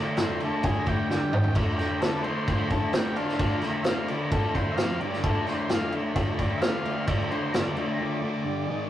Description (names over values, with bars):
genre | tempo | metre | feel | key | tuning
garage rock duo or trio | 131 BPM | 4/4 | straight | D minor | A4 = 439 Hz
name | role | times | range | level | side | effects
combo organ | melody | 0.0-8.9 s | D4 to F5 | -33 LUFS | left 2 dB | none
combo organ | sustained chords | 0.0-8.9 s | C4 to F5 | -36 LUFS | right 1 dB | none
fuzz guitar | riff | 0.0-8.9 s | F2 to D4 | -30 LUFS | left 1 dB | distortion
vintage drum kit | drums | 0.2-7.9 s | crash cymbal, kick drum, snare drum, toms | -26 LUFS | equal | none
room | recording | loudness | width
moderate booth ambience, RT60 0.2 s | rough rehearsal-room recording | -24 LUFS | side -12 dB against mid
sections
0.0-8.9 A section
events
transistor combo organ solo 0.0-8.9; drum fill 1.1-1.6; break 8.0-8.9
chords
0.0 Dm; 1.1 G5; 1.3 G#5; 1.6 Dm; 4.8 F5; 5.0 G5; 5.2 Dm; 8.4 G5; 8.7 G#5